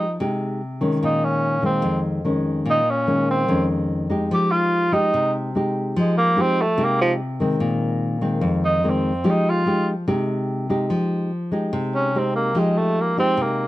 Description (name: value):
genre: bossa nova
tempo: 146 BPM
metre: 4/4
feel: straight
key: F minor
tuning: A4 = 440 Hz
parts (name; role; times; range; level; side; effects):
- breathy tenor saxophone; melody; 0.0-13.7 s; F3 to G4; -20 LUFS; right 1 dB; none
- nylon-string guitar; accompaniment; 0.0-13.7 s; F2 to G4; -21 LUFS; left 1 dB; none
room: light reverb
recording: close, detailed microphones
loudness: -18 LUFS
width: side -16 dB against mid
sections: 0.0-10.9 A section; 10.9-13.7 A section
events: tenor saxophone solo 0.0-10.9, 10.9-13.7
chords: 0.0 Fm9; 1.0 Bbm11; 4.3 Fm9; 7.6 Bb9sus4; 9.3 Fm9